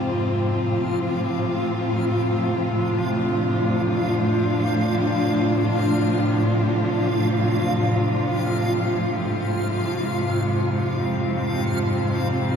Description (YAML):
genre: dark ambient drone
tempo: free time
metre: none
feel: none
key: unclear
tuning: A4 = 440 Hz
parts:
  - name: dark studio cello section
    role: sustained chords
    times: 0.0-12.6 s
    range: Ab2 to F4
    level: -20 LUFS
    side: equal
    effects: shimmer reverb
  - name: overtone-sweeping drone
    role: drone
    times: 0.0-12.6 s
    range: F2 to C3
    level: -29 LUFS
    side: equal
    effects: chorus, built-in reverb
  - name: backwards swelling texture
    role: texture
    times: 0.0-12.6 s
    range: F5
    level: -33 LUFS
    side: equal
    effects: built-in reverb, shimmer reverb
room: wet cathedral reverb, RT60 5.1 s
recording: none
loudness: -20 LUFS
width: side -7 dB against mid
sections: 0.0-12.6 A section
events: fade-in on synth drone 0.0-12.6; fade-in on synth texture 0.0-12.6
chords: 0.0 Fm; 0.7 Dm; 9.2 Fm